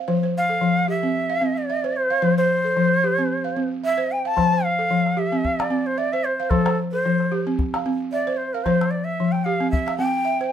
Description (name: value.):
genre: west african traditional, West African string and xylophone music.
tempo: 112 BPM.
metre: 4/4.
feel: swing 55% on 16ths.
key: F major.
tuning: A4 = 440 Hz.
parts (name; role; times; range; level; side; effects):
balafon; arpeggios; 0.0-10.5 s; F3 to F5; -22 LUFS; equal; none.
shakuhachi; melody; 0.4-10.5 s; A4 to A5; -22 LUFS; equal; none.
calabash; percussion; 4.4-10.0 s; none; -26 LUFS; left 2 dB; none.
room: light reverb.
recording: minimal, uncompressed stereo recording.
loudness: -19 LUFS.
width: side -9 dB against mid.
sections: 0.0-10.5 A section.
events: shakuhachi solo 0.0-10.5.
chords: 0.1 F; 1.2 C; 2.2 F; 3.3 C; 4.4 F; 5.4 C; 6.5 F; 7.6 C; 8.7 F5; 9.7 C.